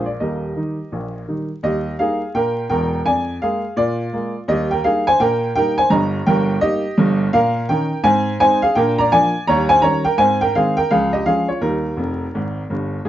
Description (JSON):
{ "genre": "jazz, stride piano", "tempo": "168 BPM", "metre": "4/4", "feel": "swing 63% on 8ths", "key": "Eb major", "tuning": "A4 = 440 Hz", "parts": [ { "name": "clear upright piano", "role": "solo", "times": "0.0-13.1 s", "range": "Eb1 to Bb5", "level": "-16 LUFS", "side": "equal", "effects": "none" } ], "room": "light reverb", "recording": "dark, warm production, vinyl crackle, nothing above 7.6 kHz", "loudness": "-16 LUFS", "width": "side -12 dB against mid", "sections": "0.0-1.6 A section; 1.6-13.1 B section", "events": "upright piano fill 12.0-13.1", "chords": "0.2 Eb; 3.1 Bb7/F; 4.5 Eb; 5.9 Eb/G; 7.3 Eb7/Bb; 8.1 Ab; 8.8 Bb7; 9.5 Eb7; 10.2 Ab; 10.9 Db; 11.6 Eb" }